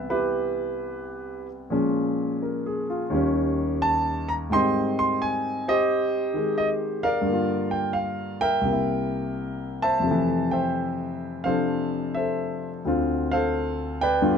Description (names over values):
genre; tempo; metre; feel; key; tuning
solo jazz; 86 BPM; 4/4; swing 68% on 8ths, rubato; C major; A4 = 444 Hz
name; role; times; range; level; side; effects
warm concert grand piano; solo; 0.0-14.4 s; C2 to C6; -23 LUFS; equal; none
room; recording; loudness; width
moderate small room reverb, RT60 0.5 s; none; -23 LUFS; side -6 dB against mid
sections
0.0-14.4 A section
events
none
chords
0.0 Cmaj7; 1.7 Bbm7; 3.1 Eb7; 4.5 Abmaj7; 7.3 Gm7; 8.6 C7; 10.0 Fmaj7; 12.8 Dm7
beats
0.33 1.03 | 1.72 2.42 3.12 3.81 | 4.50 5.19 5.88 6.57 | 7.25 7.95 8.64 9.35 | 10.04 10.74 11.45 12.14 | 12.84 13.54 14.23